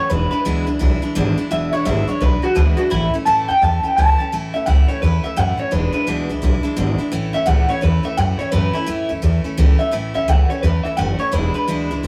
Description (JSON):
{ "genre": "rockabilly", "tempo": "171 BPM", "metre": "4/4", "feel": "swing 62% on 8ths", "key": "A major", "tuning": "A4 = 439 Hz", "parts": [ { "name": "electric guitar through a small old amp", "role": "melody", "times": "0.0-11.9 s", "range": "E4 to A5", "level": "-22 LUFS", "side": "equal", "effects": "phaser" }, { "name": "picked steel-string acoustic guitar", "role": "accompaniment", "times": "0.0-12.1 s", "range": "E2 to E4", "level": "-25 LUFS", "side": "equal", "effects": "none" }, { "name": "upright bass", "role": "bass", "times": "0.1-12.1 s", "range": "E1 to F#2", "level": "-20 LUFS", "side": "equal", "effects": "none" } ], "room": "moderate stone room reverb, RT60 1.2 s", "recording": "rough rehearsal-room recording, warm saturation", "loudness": "-18 LUFS", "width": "mono", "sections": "0.0-4.3 A section; 4.3-12.1 A section", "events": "none", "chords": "0.1 E7; 2.9 A; 5.7 E7; 7.1 A; 11.3 E7" }